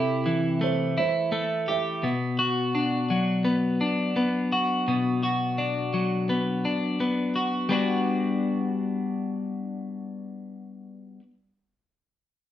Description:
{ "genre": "rock", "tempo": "84 BPM", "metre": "4/4", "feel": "straight", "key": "G major", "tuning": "A4 = 442 Hz", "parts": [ { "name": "felt-muted upright piano", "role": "arpeggios", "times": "0.0-2.0 s", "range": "A4 to E5", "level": "-31 LUFS", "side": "right 9 dB", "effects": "none" }, { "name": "twelve-string electric guitar", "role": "arpeggios", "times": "0.0-11.2 s", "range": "B2 to G4", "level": "-24 LUFS", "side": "left 1 dB", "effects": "slapback echo" } ], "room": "wet studio reverb, RT60 0.8 s", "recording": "band playing live in one room", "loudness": "-23 LUFS", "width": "side -11 dB against mid", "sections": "0.0-7.7 A section; 7.7-10.6 B section", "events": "none", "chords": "0.0 C6; 2.0 Bm; 7.7 Gmaj7", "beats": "0.62 1.33 | 2.04 2.75 3.46 4.17 | 4.88 5.59 6.30 7.01 | 7.72 8.43 9.14 9.85" }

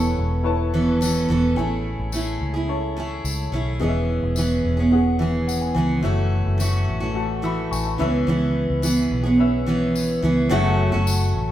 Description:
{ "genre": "acoustic pop", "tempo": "107 BPM", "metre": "4/4", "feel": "straight", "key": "unclear", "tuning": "A4 = 440 Hz", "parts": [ { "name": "picked steel-string acoustic guitar", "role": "accompaniment", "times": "0.0-11.5 s", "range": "F#2 to A4", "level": "-21 LUFS", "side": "right 2 dB", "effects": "none" }, { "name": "warm upright piano", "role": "accompaniment", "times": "0.0-11.5 s", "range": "A3 to E6", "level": "-29 LUFS", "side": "left 4 dB", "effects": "none" }, { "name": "vintage muted fingered electric bass", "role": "bass", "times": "0.0-11.5 s", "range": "E1 to C#2", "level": "-24 LUFS", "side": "equal", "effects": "none" }, { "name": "tambourine", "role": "percussion", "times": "1.0-11.2 s", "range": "none", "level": "-33 LUFS", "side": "left 4 dB", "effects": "none" } ], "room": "wet stone room reverb, RT60 1.2 s", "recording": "band playing live in one room", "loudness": "-19 LUFS", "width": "side -12 dB against mid", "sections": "0.0-1.6 A section; 1.6-10.5 B section; 10.5-11.5 A section", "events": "upright piano fill 4.9-6.0", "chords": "0.0 Aadd9/E; 1.6 Amaj7; 3.8 E6; 6.0 F#m7; 8.0 C#m7; 10.5 F#m", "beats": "0.45 1.01 | 1.57 2.13 2.69 3.24 | 3.80 4.36 4.92 5.48 | 6.04 6.60 7.16 7.72 | 8.28 8.84 9.40 9.95 | 10.51 11.07" }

